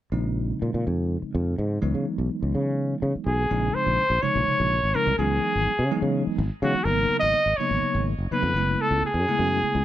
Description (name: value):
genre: electric jazz fusion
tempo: 249 BPM (eighths)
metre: 7/8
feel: straight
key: Bb phrygian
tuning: A4 = 440 Hz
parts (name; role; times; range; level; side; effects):
- bell-like tine electric piano; accompaniment; 0.1-9.8 s; C3 to Fb4; -28 LUFS; equal; medium stereo tremolo
- sustaining fretless electric bass; bass; 0.1-9.8 s; Gb1 to Db3; -25 LUFS; equal; none
- clear trumpet; melody; 3.3-9.8 s; Gb4 to Eb5; -23 LUFS; equal; none
room: light reverb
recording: none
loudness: -22 LUFS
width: side -13 dB against mid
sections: 0.1-3.5 A section; 3.5-9.8 B section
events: none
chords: 0.1 Bbm11; 1.8 Dbm11; 3.5 Bbm11; 5.2 Dbm11; 6.9 Abm11; 8.6 Gbm11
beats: | 0.13 0.37 0.61 0.85 1.10 1.34 1.58 | 1.82 2.06 2.30 2.54 2.78 3.02 3.26 | 3.50 3.75 3.99 4.23 4.47 4.71 4.95 | 5.19 5.43 5.67 5.91 6.15 6.39 6.63 | 6.87 7.11 7.35 7.59 7.83 8.07 8.32 | 8.56 8.80 9.04 9.28 9.52 9.76